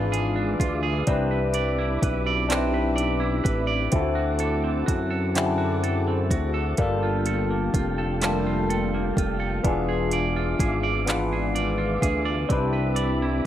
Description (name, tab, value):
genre	slow six-eight R&B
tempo	42 BPM (dotted quarters)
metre	6/8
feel	straight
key	C major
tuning	A4 = 440 Hz
part	clean electric guitar	second line	0.0-13.5 s	D3 to D5	-29 LUFS	right 6 dB	spring reverb
part	barky tine electric piano	accompaniment	0.0-13.5 s	A3 to B4	-26 LUFS	left 3 dB	phaser
part	mellow tonewheel organ	sustained chords	0.0-13.5 s	C4 to D6	-34 LUFS	equal	chorus vibrato, slow rotary speaker
part	fat analog bass	bass	0.0-13.4 s	E1 to F#2	-27 LUFS	equal	none
part	smooth R&B drum kit	drums	0.1-13.2 s	handclaps, hi-hat, kick drum	-25 LUFS	equal	overdrive
room	digital ambience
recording	none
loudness	-22 LUFS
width	side -11 dB against mid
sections	0.0-13.5 A section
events	none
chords	0.0 E7b9; 1.1 Cmaj9; 3.9 D7; 6.8 Gm9; 9.6 E7b9; 12.5 Cmaj9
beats	| 1.07 2.50 | 3.93 5.36 | 6.78 8.21 | 9.64 11.07 | 12.50